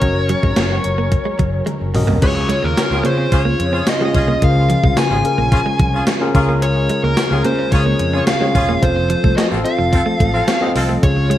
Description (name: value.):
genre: 1980s-style pop.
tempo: 109 BPM.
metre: 4/4.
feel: straight.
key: Db major.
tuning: A4 = 437 Hz.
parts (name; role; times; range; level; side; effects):
dark smooth lead guitar; melody; 0.0-11.4 s; Bb4 to Ab5; -21 LUFS; equal; overdrive.
tine electric piano; accompaniment; 0.0-11.4 s; Db3 to Eb5; -20 LUFS; left 1 dB; none.
brassy analog pad; sustained chords; 0.0-11.4 s; Db3 to Bb4; -26 LUFS; equal; chorus, tremolo.
fretless electric bass; bass; 0.0-11.3 s; Fb1 to Db3; -20 LUFS; equal; none.
gated 80s digital drum machine; drums; 0.0-11.4 s; crash cymbal, hi-hat, kick drum, snare drum, tambourine, toms; -18 LUFS; equal; gated reverb, gated reverb snare, overdrive.
direct-recorded clean electric guitar; riff; 0.2-11.4 s; F3 to Db4; -25 LUFS; right 4 dB; lush chorus.
warm horn section; stabs; 2.9-10.9 s; C4 to A4; -26 LUFS; equal; none.
room: light reverb.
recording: bright 1980s-style digital production, vinyl crackle.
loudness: -13 LUFS.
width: side -12 dB against mid.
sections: 0.0-2.2 A section; 2.2-11.4 B section.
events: drum fill 1.7-2.2.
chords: 0.0 Gb; 2.2 Dbmaj7; 6.3 Bbm7/Db; 8.8 F.